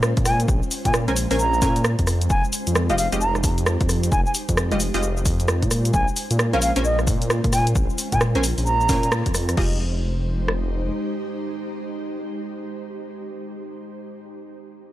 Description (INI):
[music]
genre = UK garage, two-step garage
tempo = 132 BPM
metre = 4/4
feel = swing 63% on 16ths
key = F minor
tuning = A4 = 436 Hz
[part]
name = ethereal airy pad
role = sustained chords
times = 0.0-14.0 s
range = Ab3 to C5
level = -31 LUFS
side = right 1 dB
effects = ensemble chorus, built-in reverb, sidechain pumping
[part]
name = dark detuned saw bass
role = bass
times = 0.0-10.9 s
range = F1 to Bb2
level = -22 LUFS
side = equal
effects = none
[part]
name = punchy analog drum machine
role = drums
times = 0.0-9.7 s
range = cabasa, crash cymbal, hi-hat, rim click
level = -25 LUFS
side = equal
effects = none
[part]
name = punchy analog drum machine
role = drums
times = 0.2-10.6 s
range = kick drum, rim click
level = -23 LUFS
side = equal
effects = none
[part]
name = mellow silver concert flute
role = melody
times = 0.3-9.1 s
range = Eb5 to Bb5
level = -25 LUFS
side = right 1 dB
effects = analog delay
[part]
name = punchy chord stab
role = stabs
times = 1.1-14.1 s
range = Ab3 to Ab5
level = -26 LUFS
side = equal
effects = chorus, analog delay
[sound]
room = little or no reverb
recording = dry, gritty hardware recording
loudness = -19 LUFS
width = side -14 dB against mid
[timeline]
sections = 0.0-9.6 A section; 9.6-13.2 B section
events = drop 0.0-9.6; band accent 9.1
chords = 0.0 Bbm9; 2.3 Fm9; 5.7 Bbm9; 9.6 Fm9